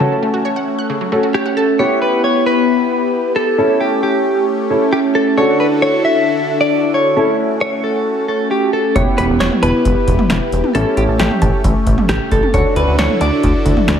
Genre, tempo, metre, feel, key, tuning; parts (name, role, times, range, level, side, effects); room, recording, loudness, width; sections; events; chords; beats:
synth-pop; 134 BPM; 4/4; straight; E dorian; A4 = 440 Hz
direct-recorded clean electric guitar; melody; 0.0-14.0 s; G4 to A5; -17 LUFS; equal; wide subtle chorus, analog delay
warm concert grand piano; accompaniment; 0.0-14.0 s; B3 to A4; -20 LUFS; left 1 dB; analog chorus
phased analog pad; sustained chords; 0.0-14.0 s; D3 to A4; -18 LUFS; equal; phaser, chorus
wide unison pluck; arpeggios; 0.0-1.6 s; C#3 to F#6; -22 LUFS; right 1 dB; analog delay
chorused synth bass; bass; 9.0-14.0 s; E1 to D2; -17 LUFS; equal
electro analog drum machine; drums; 9.0-14.0 s; cowbell, hi-hat, kick drum, snare drum, toms; -17 LUFS; equal
wet plate reverb, RT60 1.6 s, digital ambience; dreamy mix soaked in reverb; -12 LUFS; side -8 dB against mid
0.0-1.8 A section; 1.8-14.0 B section
break 0.0-1.8
0.0 F#m; 1.8 Em; 3.6 A7; 5.4 Dadd9; 7.2 A6; 9.0 Em; 10.7 A7; 12.5 Dadd9
| 0.00 0.45 0.90 1.34 | 1.79 2.24 2.69 3.14 | 3.58 4.03 4.48 4.93 | 5.38 5.82 6.27 6.72 | 7.17 7.61 8.06 8.51 | 8.96 9.40 9.85 10.30 | 10.75 11.20 11.64 12.09 | 12.54 12.99 13.44 13.88